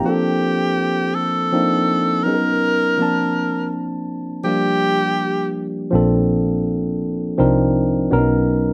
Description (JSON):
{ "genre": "R&B, neo-soul", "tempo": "82 BPM", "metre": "4/4", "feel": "swing 58% on 16ths", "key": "Bb major", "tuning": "A4 = 440 Hz", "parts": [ { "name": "barky tine electric piano", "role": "accompaniment", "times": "0.0-8.7 s", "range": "F3 to A5", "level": "-21 LUFS", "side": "equal", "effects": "none" }, { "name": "breathy tenor saxophone", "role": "melody", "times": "0.1-5.5 s", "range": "G4 to A#4", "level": "-22 LUFS", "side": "equal", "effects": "slapback echo" }, { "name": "vintage muted fingered electric bass", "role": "bass", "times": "5.9-8.7 s", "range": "Bb1 to C2", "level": "-24 LUFS", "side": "equal", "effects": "none" } ], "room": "little or no reverb", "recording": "recorded outdoors, with no room sound", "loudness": "-19 LUFS", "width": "mono", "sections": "0.1-8.7 A section", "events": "none", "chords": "0.1 Bbmaj9; 1.5 Cm11; 2.2 Bmaj9; 3.0 Bbmaj9; 4.4 Gm7; 5.9 Bbmaj9; 7.4 Cm11; 8.1 Bmaj9" }